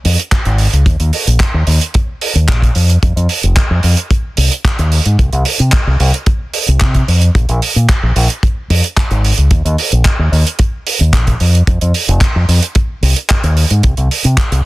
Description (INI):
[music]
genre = nu-disco, nu disco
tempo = 111 BPM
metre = 4/4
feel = straight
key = unclear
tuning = A4 = 440 Hz
[part]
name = damped 70s drum kit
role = drums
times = 0.0-14.6 s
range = handclaps, hi-hat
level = -17 LUFS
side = right 3 dB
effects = none
[part]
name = fingered electric bass with an envelope filter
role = bass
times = 0.1-14.6 s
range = F1 to C3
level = -11 LUFS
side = equal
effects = none
[part]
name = kick drum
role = drums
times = 0.3-14.5 s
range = none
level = -12 LUFS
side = equal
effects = none
[sound]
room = little or no reverb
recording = dense, heavily limited modern master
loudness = -10 LUFS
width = side -19 dB against mid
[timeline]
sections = 0.0-14.7 A section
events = none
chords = none